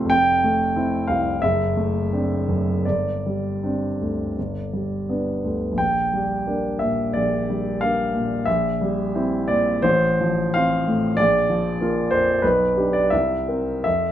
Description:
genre	classical, romantic character piece for solo piano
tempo	77-97 BPM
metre	4/4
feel	rubato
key	unclear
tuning	A4 = 439 Hz
part	warm grand piano	solo	0.0-14.1 s	F1 to G5	-19 LUFS	equal	none
room	moderate large studio reverb, RT60 1.1 s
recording	minimal, uncompressed stereo recording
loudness	-19 LUFS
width	side -11 dB against mid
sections	0.0-14.1 A section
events	none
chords	0.1 Fmaj7; 1.4 D7/F#; 2.9 Gsus4; 4.4 G; 5.8 Gm/Bb; 8.5 C7/Bb; 9.8 F/A; 11.2 Bb; 12.4 G/B; 13.1 C7

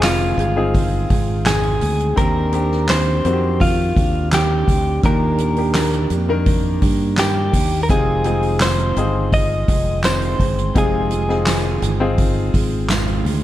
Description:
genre	piano-driven pop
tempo	84 BPM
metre	4/4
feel	straight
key	unclear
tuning	A4 = 440 Hz
part	direct-recorded clean electric guitar	melody	0.0-12.2 s	F4 to Eb5	-22 LUFS	left 1 dB	none
part	clear concert grand piano	accompaniment	0.0-13.4 s	Bb2 to G5	-25 LUFS	left 3 dB	none
part	picked steel-string acoustic guitar	riff	0.0-13.4 s	F2 to Ab4	-25 LUFS	right 6 dB	none
part	fingered electric bass	bass	0.0-13.4 s	F1 to G2	-20 LUFS	equal	none
part	soft-mallet drum kit	drums	0.0-13.4 s	handclaps, hi-hat, kick drum, snare drum	-20 LUFS	equal	none
part	tambourine	percussion	0.0-13.1 s	none	-33 LUFS	left 3 dB	none
room	light reverb, small room ambience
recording	dark, warm production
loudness	-15 LUFS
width	side -13 dB against mid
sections	0.0-13.4 A section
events	none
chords	0.0 Fm7; 2.2 Cmadd9/Eb; 5.0 Ebmaj7; 7.9 Fm7

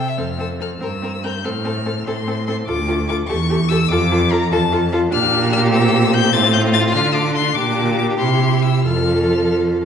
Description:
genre	quick classical-period movement for string quartet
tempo	97 BPM (dotted quarters)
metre	6/8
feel	rubato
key	F major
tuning	A4 = 439 Hz
part	rich violin	melody	0.0-9.5 s	A5 to A6	-21 LUFS	left 7 dB	none
part	rich violin	second line	0.0-9.8 s	F4 to E5	-23 LUFS	left 2 dB	none
part	clear viola	accompaniment	0.2-9.8 s	C4 to G4	-23 LUFS	right 1 dB	none
part	rich cello	bass	0.2-9.8 s	D2 to D3	-18 LUFS	right 2 dB	none
room	wet recital hall reverb, RT60 1.6 s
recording	heard from further back in the room, nothing above 11.0 kHz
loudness	-15 LUFS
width	side -8 dB against mid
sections	0.2-9.8 A section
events	none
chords	0.2 F; 0.8 C7/G; 1.4 F/A; 2.7 Dm; 3.3 A7/E; 3.9 Dm/F; 5.1 Gm7/Bb; 5.7 C7/Bb; 6.3 F/A; 7.0 Dm; 7.6 Gm/Bb; 8.2 C; 8.9 F

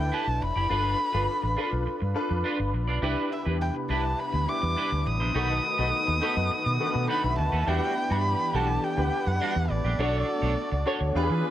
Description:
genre	pop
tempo	103 BPM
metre	4/4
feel	straight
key	E minor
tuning	A4 = 441 Hz
part	warm erhu	melody	0.0-11.4 s	D5 to D#6	-29 LUFS	equal	none
part	warm grand piano	accompaniment	0.0-11.5 s	D#3 to F#5	-31 LUFS	left 2 dB	ensemble chorus
part	vintage muted fingered electric bass	bass	0.0-11.4 s	F1 to E3	-28 LUFS	equal	none
part	clean electric guitar	riff	0.1-11.3 s	G3 to D5	-34 LUFS	right 4 dB	lush chorus
part	hollow soft pad	sustained chords	3.0-11.5 s	C3 to G#4	-37 LUFS	left 1 dB	ensemble chorus
part	mellow horn section	second line	7.7-11.5 s	B3 to B4	-36 LUFS	right 4 dB	none
room	light reverb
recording	none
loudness	-24 LUFS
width	side -12 dB against mid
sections	0.0-7.7 A section; 7.7-11.5 B section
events	grand piano fill 6.8-7.7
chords	0.0 G6; 0.7 G7; 3.0 Cmaj9; 5.4 B7; 7.7 Em9; 10.0 Bm9

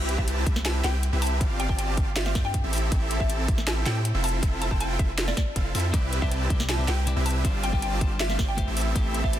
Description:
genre	future bass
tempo	159 BPM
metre	4/4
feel	half-time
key	C major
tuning	A4 = 440 Hz
part	supersaw chords	riff	0.0-9.4 s	C4 to A5	-30 LUFS	right 1 dB	sidechain pumping
part	long sustained 808-style bass	bass	0.0-9.4 s	F1 to A2	-27 LUFS	equal	sidechain pumping
part	trap drum kit	drums	0.1-9.4 s	hi-hat, snare drum	-31 LUFS	equal	none
part	mallet-like synth pluck	melody	0.2-9.3 s	D5 to A5	-34 LUFS	equal	lush chorus, sidechain pumping, digital delay
part	electronic kick drum	drums	0.2-9.3 s	none	-26 LUFS	equal	none
part	clean electric guitar	accompaniment	5.9-9.4 s	C3 to D5	-34 LUFS	left 4 dB	vintage 12-bit sampler grit, sidechain pumping, ping-pong delay
room	little or no reverb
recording	dense, heavily limited modern master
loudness	-23 LUFS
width	side -12 dB against mid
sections	0.0-9.4 A section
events	none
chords	0.0 Cmaj7; 1.4 G7sus4; 2.7 Fmaj7; 5.9 Cmaj7; 7.4 G7sus4; 8.8 Am7

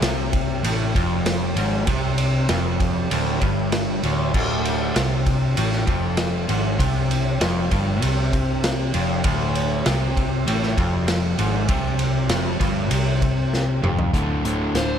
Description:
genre	blues rock power trio and southern rock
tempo	98 BPM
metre	4/4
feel	straight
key	D minor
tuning	A4 = 440 Hz
part	overdriven electric guitar	riff	0.0-15.0 s	D2 to D3	-22 LUFS	left 1 dB	none
part	vintage muted picked electric bass	bass	0.0-15.0 s	D1 to C2	-25 LUFS	equal	none
part	vintage drum kit	drums	0.0-14.9 s	crash cymbal, hi-hat, kick drum, ride cymbal, snare drum, toms	-24 LUFS	equal	none
part	overdriven slide guitar	melody	14.8-15.0 s	C5	-25 LUFS	left 1 dB	none
room	moderate lush hall reverb, RT60 2.3 s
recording	none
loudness	-19 LUFS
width	side -8 dB against mid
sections	0.0-14.1 A section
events	drum fill 13.5-14.1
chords	0.0 Dm; 14.1 D5

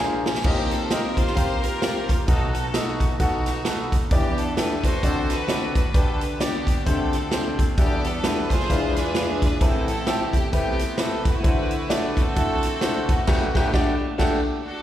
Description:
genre	uptempo gospel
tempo	131 BPM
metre	4/4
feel	swing 59% on 8ths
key	G major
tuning	A4 = 441 Hz
part	clear grand piano	accompaniment	0.0-14.4 s	G1 to G#5	-25 LUFS	left 2 dB	plate reverb, slapback echo
part	swinging big-band drum kit	drums	0.3-14.4 s	crash cymbal, hi-hat, kick drum, snare drum	-23 LUFS	equal	none
part	bright chamber string section	melody	0.5-14.8 s	A3 to C5	-28 LUFS	right 1 dB	plate reverb, slapback echo
room	light reverb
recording	live gig heard through the venue's PA, recital hall reverb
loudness	-20 LUFS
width	side -12 dB against mid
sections	0.4-14.8 A section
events	drum fill 0.0-0.4; grand piano fill 0.0-0.4; band accent 13.3-14.8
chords	0.4 Eb69; 2.3 B7; 4.1 Em7; 5.0 D7; 5.9 G/D; 6.9 D7sus4; 7.8 Em11; 8.7 E7b9; 9.6 Am9; 11.4 D9; 13.3 Gmaj9

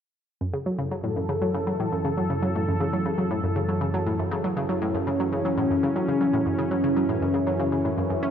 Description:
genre	ambient, sequencer-driven space music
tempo	119 BPM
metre	4/4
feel	straight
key	F# minor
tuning	A4 = 440 Hz
part	phased analog pad	sustained chords	0.4-8.3 s	F#2 to A4	-25 LUFS	equal	phaser, chorus
part	analog pluck	riff	0.4-8.3 s	F#2 to C#4	-26 LUFS	equal	chorus, ping-pong delay
room	wet huge ambient reverb, RT60 7.3 s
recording	worn, warbling old tape, cassette tape, warbly pitch drift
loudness	-23 LUFS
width	side -8 dB against mid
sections	0.4-8.3 A section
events	filter sweep on synth arpeggio sound 0.4-8.3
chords	0.4 F#m7

